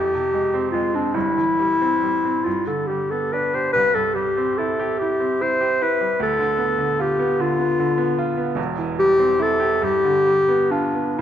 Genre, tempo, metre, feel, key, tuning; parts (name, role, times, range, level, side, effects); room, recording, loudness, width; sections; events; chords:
classical, romantic duo for clarinet and grand piano; 43-51 BPM (dotted quarters); 6/8; rubato; C major; A4 = 436 Hz
warm clarinet; melody; 0.0-11.2 s; D4 to C5; -19 LUFS; left 2 dB
bright baby grand piano; accompaniment; 0.0-11.2 s; E1 to G4; -24 LUFS; right 4 dB
moderate scoring stage reverb, RT60 1.5 s; dark, warm production; -18 LUFS; side -10 dB against mid
0.0-11.2 A section
0.0 Fm; 1.1 C/G; 2.5 G; 3.7 C; 6.2 Bdim/D; 8.6 C/E; 9.8 G7